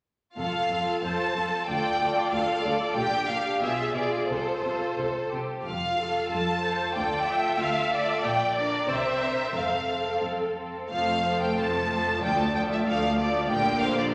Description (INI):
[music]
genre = quick classical-period movement for string orchestra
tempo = 92 BPM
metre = 2/4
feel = rubato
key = F major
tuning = A4 = 441 Hz
[part]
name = rich studio violin section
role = melody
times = 0.4-14.0 s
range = C5 to A5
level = -30 LUFS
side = equal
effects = none
[part]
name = rich studio violin section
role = second line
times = 0.4-14.1 s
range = C4 to D5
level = -34 LUFS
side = equal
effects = none
[part]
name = warm studio viola section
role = accompaniment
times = 0.4-14.1 s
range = D3 to E5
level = -33 LUFS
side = equal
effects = none
[part]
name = clear studio cello section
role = bass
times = 0.4-14.1 s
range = D2 to C3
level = -37 LUFS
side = equal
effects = none
[part]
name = rich studio double bass section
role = bass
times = 0.4-14.1 s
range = F1 to D2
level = -44 LUFS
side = equal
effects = none
[sound]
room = wet concert hall reverb, RT60 2.1 s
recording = none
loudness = -27 LUFS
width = mono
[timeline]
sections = 0.4-10.9 A section; 10.9-14.1 A section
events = none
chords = 0.4 F; 1.7 Dm; 3.0 Gm/Bb; 3.6 Bdim7; 4.3 F/C; 5.7 F; 7.0 Dm; 8.2 Gm/Bb; 8.9 C7; 9.6 F; 12.2 Dm; 13.5 Gm/Bb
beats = | 0.38 1.03 | 1.69 2.33 | 2.97 3.62 | 4.30 4.98 | 5.66 6.32 | 6.96 7.61 | 8.25 8.89 | 9.56 10.24 | 10.91 11.57 | 12.22 12.87 | 13.51 14.14